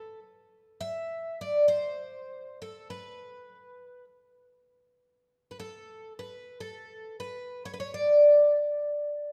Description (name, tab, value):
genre	fado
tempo	100 BPM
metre	4/4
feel	rubato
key	unclear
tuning	A4 = 440 Hz
part	picked twelve-string acoustic guitar	solo	0.0-9.3 s	A4 to E5	-28 LUFS	equal	none
room	moderate concert hall reverb, RT60 2.3 s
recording	none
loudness	-25 LUFS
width	mono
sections	0.0-9.3 A section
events	none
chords	none